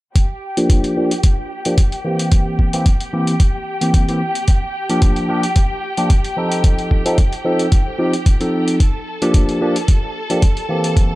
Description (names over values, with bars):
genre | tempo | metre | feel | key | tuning
nu-disco, nu disco | 111 BPM | 4/4 | swing 54% on 16ths | G minor | A4 = 439 Hz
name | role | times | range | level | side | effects
bright studio string section | sustained chords | 0.2-11.2 s | G4 to A5 | -25 LUFS | equal | sidechain pumping, low-pass filter
electronic hi-hat | drums | 0.2-11.1 s | none | -27 LUFS | left 1 dB | none
electronic kick drum | drums | 0.2-11.1 s | none | -13 LUFS | equal | none
barky tine electric piano | accompaniment | 0.6-11.2 s | E3 to A4 | -19 LUFS | equal | phaser, low-pass filter, dub echo
room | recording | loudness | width
little or no reverb | dark, warm production | -14 LUFS | side -18 dB against mid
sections
0.2-11.2 A section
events
filter sweep on tine electric piano 0.2-11.2; filter sweep on string section 0.2-11.2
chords
0.2 Gm7; 2.3 C7; 4.2 Gm7; 6.6 F7; 8.8 Gm7